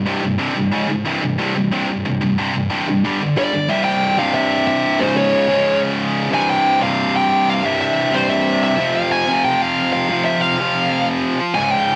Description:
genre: metal.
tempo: 183 BPM.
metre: 4/4.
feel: straight.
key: unclear.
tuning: A4 = 438 Hz.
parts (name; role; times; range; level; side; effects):
heavy high-gain guitar; riff; 0.0-12.0 s; C2 to G3; -20 LUFS; equal; distortion.
high-gain lead guitar; melody; 3.4-12.0 s; C5 to Ab5; -20 LUFS; equal; distortion, slapback echo.
room: digital ambience.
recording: dry, close 1970s-style studio recording.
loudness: -18 LUFS.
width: mono.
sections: 0.0-3.7 A section; 3.7-12.0 B section.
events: none.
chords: 0.0 C5; 0.7 Db5; 1.1 C5; 3.0 G5; 3.7 C; 5.0 Db5; 6.3 C; 8.8 F5.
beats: 0.07 0.40 0.73 | 1.06 1.40 1.73 2.06 | 2.39 2.72 3.04 3.37 | 3.70 4.03 4.36 4.69 | 5.02 5.34 5.67 6.00 | 6.33 6.65 6.98 7.31 | 7.63 7.96 8.29 8.62 | 8.94 9.27 9.60 9.93 | 10.25 10.58 10.90 11.23 | 11.56 11.88.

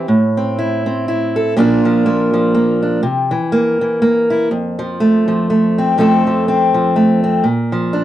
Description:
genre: folk, solo fingerstyle acoustic guitar.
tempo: 122 BPM.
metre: 3/4.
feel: swing 58% on 8ths.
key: F major.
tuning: A4 = 441 Hz.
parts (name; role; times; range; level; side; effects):
fingerpicked steel-string acoustic guitar; solo; 0.0-8.0 s; F2 to A4; -12 LUFS; equal; none.
room: wet small room reverb, RT60 0.5 s.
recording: home recording on cassette.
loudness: -12 LUFS.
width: side -12 dB against mid.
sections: 0.0-6.0 A section; 6.0-8.0 B section.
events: none.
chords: 0.1 Am; 1.6 Bb; 3.0 C7; 4.5 F; 7.4 Bb.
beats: | 0.08 0.57 1.06 | 1.55 2.04 2.54 | 3.03 3.52 4.01 | 4.50 4.99 5.48 | 5.97 6.46 6.96 | 7.45 7.94.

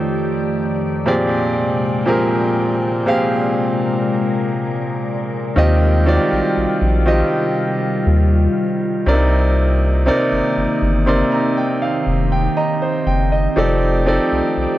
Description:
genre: R&B.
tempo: 60 BPM.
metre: 4/4.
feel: straight.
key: Eb major.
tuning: A4 = 438 Hz.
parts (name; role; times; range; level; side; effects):
clear baby grand piano; accompaniment; 0.0-14.8 s; Bb2 to C6; -18 LUFS; right 1 dB; none.
glassy FM pad; sustained chords; 0.0-14.8 s; F2 to G5; -22 LUFS; left 1 dB; ensemble chorus, built-in reverb.
round analog bass; bass; 5.6-14.7 s; F1 to Eb2; -16 LUFS; equal; none.
room: light reverb, studio reverb.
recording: worn, warbling old tape, cassette tape, warbly pitch drift.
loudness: -15 LUFS.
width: side -14 dB against mid.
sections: 0.0-14.8 A section.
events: grand piano fill 10.6-13.6.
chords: 0.0 F13; 1.1 Bb13; 5.6 Eb69; 9.1 Cm9; 13.6 F13.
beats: 0.56 | 1.56 2.56 3.56 4.56 | 5.56 6.56 7.56 8.56 | 9.56 10.56 11.56 12.56 | 13.56 14.56.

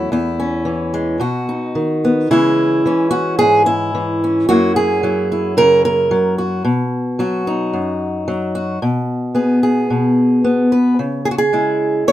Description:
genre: folk, solo fingerstyle acoustic guitar.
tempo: 110 BPM.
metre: 4/4.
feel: straight.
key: unclear.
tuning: A4 = 440 Hz.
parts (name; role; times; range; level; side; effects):
fingerpicked steel-string acoustic guitar; solo; 0.0-12.1 s; E2 to C#5; -14 LUFS; equal; none.
room: moderate studio reverb, RT60 0.5 s.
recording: minimal, uncompressed stereo recording.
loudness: -14 LUFS.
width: side -13 dB against mid.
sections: 0.0-2.3 A section; 2.3-12.1 B section.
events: none.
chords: 0.1 C#m/E; 1.2 B; 2.3 C#m; 4.5 F#7; 6.7 B; 8.8 G#m/B; 11.0 C#m.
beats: | 0.11 0.66 1.20 1.75 | 2.30 2.85 3.40 3.94 | 4.49 5.03 5.57 6.11 | 6.65 7.19 7.73 8.27 | 8.81 9.35 9.89 10.44 | 10.99 11.54 12.08.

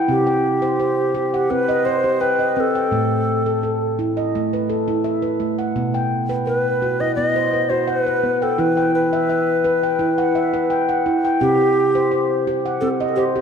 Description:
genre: world meditative.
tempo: 85 BPM.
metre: 4/4.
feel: straight.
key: unclear.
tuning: A4 = 440 Hz.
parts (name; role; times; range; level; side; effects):
handpan; arpeggios; 0.0-13.4 s; A2 to G5; -19 LUFS; right 1 dB; none.
hollow Native American-style cedar flute; melody; 0.1-13.2 s; G4 to D#5; -20 LUFS; left 1 dB; ping-pong delay.
room: wet concert hall reverb, RT60 2.1 s.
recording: dark, warm production.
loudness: -17 LUFS.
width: side -6 dB against mid.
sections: 0.0-13.4 A section.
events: none.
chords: 0.1 C5; 2.9 A5; 5.8 B5; 8.6 Em; 11.4 C5.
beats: | 0.09 0.80 1.51 2.22 | 2.93 3.64 4.34 5.05 | 5.76 6.47 7.17 7.88 | 8.59 9.30 10.00 10.71 | 11.42 12.12 12.83.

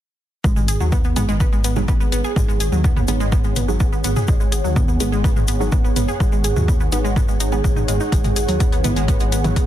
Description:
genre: melodic techno.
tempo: 125 BPM.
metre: 4/4.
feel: straight.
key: G# minor.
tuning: A4 = 437 Hz.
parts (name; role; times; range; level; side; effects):
wide unison pluck; arpeggios; 0.4-9.6 s; F#3 to G#4; -24 LUFS; equal; sidechain pumping, ping-pong delay.
dark detuned saw bass; bass; 0.4-9.7 s; G#1 to D#2; -22 LUFS; equal; sidechain pumping.
electronic kick drum; drums; 0.4-9.7 s; none; -18 LUFS; equal; none.
ethereal airy pad; texture; 2.0-9.7 s; G#4 to F#5; -28 LUFS; right 2 dB; ensemble chorus, built-in reverb, phaser, sidechain pumping.
tube shaker; percussion; 0.5-9.7 s; none; -34 LUFS; left 4 dB; none.
deep house drum kit; drums; 0.6-9.7 s; hi-hat, toms; -25 LUFS; equal; overdrive.
filtered dub chord stab; stabs; 1.2-9.5 s; E3 to G#4; -29 LUFS; right 2 dB; phaser, sidechain pumping, ping-pong delay.
room: light reverb, digital ambience.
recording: dense, heavily limited modern master.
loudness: -16 LUFS.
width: side -12 dB against mid.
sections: 0.4-9.7 A section.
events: none.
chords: 0.4 G#m7; 8.1 E/G#.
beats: | 0.44 0.92 1.40 1.88 | 2.36 2.84 3.32 3.80 | 4.28 4.76 5.24 5.72 | 6.20 6.68 7.16 7.64 | 8.12 8.60 9.08 9.56.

